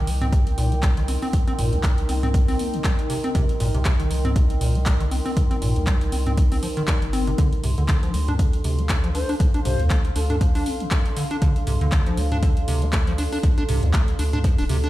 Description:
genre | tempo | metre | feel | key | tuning
acid house | 119 BPM | 4/4 | swing 56% on 16ths | D phrygian | A4 = 440 Hz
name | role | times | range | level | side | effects
acid bass, square | riff | 0.0-14.9 s | C2 to D4 | -27 LUFS | equal | tube saturation, lush chorus, cassette tape, sidechain pumping, digital delay
round analog bass | bass | 0.0-14.9 s | D1 to D2 | -24 LUFS | equal | sidechain pumping
warbly tape-like pad | texture | 0.0-14.9 s | D4 to D6 | -30 LUFS | right 1 dB | chorus, built-in reverb, sidechain pumping
booming analog drum machine | drums | 0.1-14.9 s | handclaps, hi-hat, toms | -29 LUFS | equal | none
electronic kick drum | drums | 0.3-14.6 s | none | -20 LUFS | equal | overdrive
breathy mellow concert flute | melody | 9.1-10.4 s | A4 to C5 | -32 LUFS | left 3 dB | ping-pong delay
room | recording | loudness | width
light reverb | played on a big sound system in a bare room, stone room reverb | -19 LUFS | side -16 dB against mid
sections
0.0-14.9 A section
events
filter sweep on acid bass 0.0-14.9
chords
0.0 Cm7; 7.4 Dm7

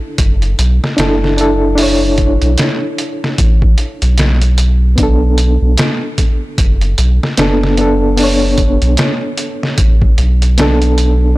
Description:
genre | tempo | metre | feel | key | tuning
trip hop | 75 BPM | 4/4 | swing 60% on 16ths | B minor | A4 = 440 Hz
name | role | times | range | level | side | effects
reed electric piano | accompaniment | 0.0-11.4 s | B3 to C#5 | -16 LUFS | equal | fast tremolo, harmonic tremolo, tape echo
round analog bass | bass | 0.2-11.3 s | F#1 to B1 | -12 LUFS | equal | tube saturation
trip hop sampler-style drum kit | drums | 0.2-11.2 s | hi-hat, kick drum, snare drum | -15 LUFS | equal | studio reverb
room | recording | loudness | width
digital ambience | blown-out, overdriven recording, overdrive | -10 LUFS | side -19 dB against mid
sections
0.0-11.4 A section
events
none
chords
0.0 E7sus4; 5.0 Bm7

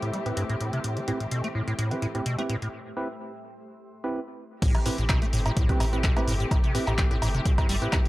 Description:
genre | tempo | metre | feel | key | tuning
acid house | 127 BPM | 4/4 | swing 53% on 16ths | A minor | A4 = 440 Hz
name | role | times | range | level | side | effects
muted studio string section | sustained chords | 0.0-8.1 s | E3 to G4 | -35 LUFS | left 1 dB | sidechain pumping
acid bass, square | riff | 0.0-8.1 s | G2 to A3 | -29 LUFS | equal | overdrive, ensemble chorus, sidechain pumping, analog delay
punchy analog drum machine | drums | 0.0-8.1 s | cowbell, crash cymbal, handclaps, hi-hat, rim click, shaker | -32 LUFS | right 1 dB | overdrive
granular cloud pad | texture | 0.0-2.7 s | A3 to E5 | -40 LUFS | left 1 dB | built-in reverb, sidechain pumping
percussive organ stab | stabs | 0.3-8.0 s | C4 to B4 | -33 LUFS | right 2 dB | chorus, analog delay
round analog bass | bass | 4.6-7.8 s | G1 to A2 | -30 LUFS | equal | tube saturation, sidechain pumping
electronic kick drum | drums | 4.6-8.0 s | none | -24 LUFS | equal | none
room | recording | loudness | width
light reverb | dry, gritty hardware recording | -24 LUFS | side -18 dB against mid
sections
0.0-4.6 A section; 4.6-8.1 B section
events
break 2.7-4.6; drop 4.6-8.1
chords
0.0 Am7

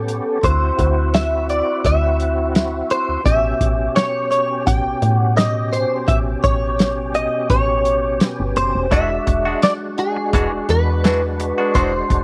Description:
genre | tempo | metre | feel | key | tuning
straight-eighth soul blues | 85 BPM | 4/4 | straight | A mixolydian | A4 = 440 Hz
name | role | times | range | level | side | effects
direct-recorded clean electric guitar | melody | 0.0-12.2 s | G#4 to G5 | -22 LUFS | equal | ensemble chorus
percussive tonewheel organ | accompaniment | 0.0-12.2 s | B2 to G4 | -27 LUFS | equal | slow rotary speaker, overdrive, chorus vibrato
woody FM bass | bass | 0.0-12.2 s | E1 to A2 | -23 LUFS | equal | none
warm soul drum kit | drums | 0.1-12.2 s | hi-hat, kick drum, snare drum | -21 LUFS | equal | none
direct-recorded clean electric guitar | stabs | 8.9-12.1 s | E3 to F#4 | -27 LUFS | equal | none
room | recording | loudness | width
studio reverb | none | -18 LUFS | mono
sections
0.0-12.2 A section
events
none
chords
0.4 D9; 3.3 A9; 8.9 E9

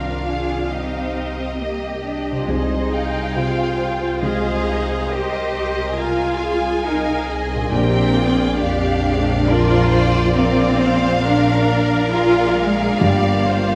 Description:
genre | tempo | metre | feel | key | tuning
cinematic, emotional film score for orchestra | 68 BPM | 3/4 | rubato | unclear | A4 = 440 Hz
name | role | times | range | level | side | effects
warm symphonic violin section | melody | 0.0-13.8 s | C5 to Ab5 | -28 LUFS | equal | none
warm symphonic violin section | second line | 0.0-13.8 s | F4 to F5 | -29 LUFS | equal | none
dark concert grand piano | accompaniment | 0.0-13.8 s | Bb1 to Bb4 | -25 LUFS | equal | none
rich symphonic viola section | accompaniment | 0.0-13.8 s | Ab3 to G5 | -29 LUFS | equal | none
concert harp | arpeggios | 0.0-13.8 s | Bb2 to Bb4 | -32 LUFS | equal | none
clear symphonic double bass section | bass | 0.0-13.8 s | G1 to C2 | -26 LUFS | equal | none
dark symphonic cello section | bass | 0.0-13.8 s | Ab3 to Ab4 | -24 LUFS | equal | none
room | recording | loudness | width
wet scoring stage reverb, RT60 1.7 s | none | -19 LUFS | mono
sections
0.0-13.8 A section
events
none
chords
0.0 Cm7; 2.5 Fm7/C; 7.7 Bb; 13.0 Gm7

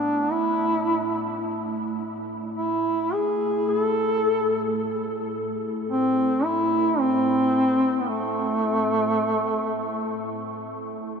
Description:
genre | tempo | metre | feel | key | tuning
caucasian folk, Caucasian lament | free time | none | none | A harmonic minor | A4 = 439 Hz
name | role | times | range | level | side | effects
mellow duduk | melody | 0.0-10.4 s | A3 to A4 | -22 LUFS | equal | none
deep dark ambient pad | drone | 0.0-11.2 s | A2 | -32 LUFS | right 2 dB | chorus, built-in reverb
room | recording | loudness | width
wet huge ambient reverb, RT60 8.1 s | in a vast, echoing space | -22 LUFS | side -6 dB against mid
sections
0.0-11.2 A section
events
none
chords
none

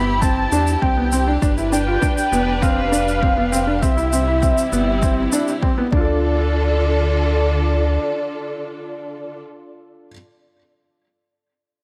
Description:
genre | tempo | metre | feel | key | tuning
piano and strings electronica | 100 BPM | 4/4 | straight | D dorian | A4 = 439 Hz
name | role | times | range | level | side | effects
warm velvety synth lead | melody | 0.0-9.4 s | D5 to B5 | -25 LUFS | equal | chorus
warm symphonic string section | sustained chords | 0.0-9.4 s | C3 to B4 | -28 LUFS | equal | sidechain pumping
felt-muted upright piano | riff | 0.0-10.1 s | B3 to D5 | -25 LUFS | equal | tape echo
round analog bass | bass | 0.0-8.0 s | F1 to E2 | -23 LUFS | equal | sidechain pumping
electronic kick drum | drums | 0.2-6.0 s | none | -22 LUFS | equal | none
shaker | drums | 0.2-5.6 s | none | -32 LUFS | equal | overdrive
room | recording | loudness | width
light reverb | none | -18 LUFS | mono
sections
0.0-6.2 A section; 6.2-8.6 B section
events
drop 0.0-6.2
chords
0.0 C; 1.4 G; 3.8 C; 5.9 Dm

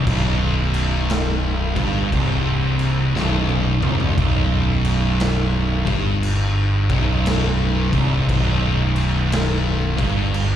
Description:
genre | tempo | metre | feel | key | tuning
stoner and doom metal | 58 BPM | 4/4 | swing 65% on 8ths | unclear | A4 = 443 Hz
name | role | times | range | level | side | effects
thick fuzz guitar | riff | 0.0-10.6 s | B1 to G2 | -22 LUFS | left 5 dB | distortion, slapback echo
thick fuzz guitar | riff | 0.0-10.6 s | B1 to G2 | -23 LUFS | right 6 dB | distortion
growling picked electric bass | bass | 0.0-10.6 s | B0 to G1 | -23 LUFS | equal | overdrive, tube saturation
raw garage drum kit | drums | 0.1-10.6 s | crash cymbal, kick drum, snare drum, toms | -24 LUFS | equal | none
room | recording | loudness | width
small room ambience | live gig heard through the venue's PA, club reverb | -17 LUFS | side -10 dB against mid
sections
0.0-10.6 A section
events
drum fill 3.1-4.2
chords
0.0 Gadd11/B

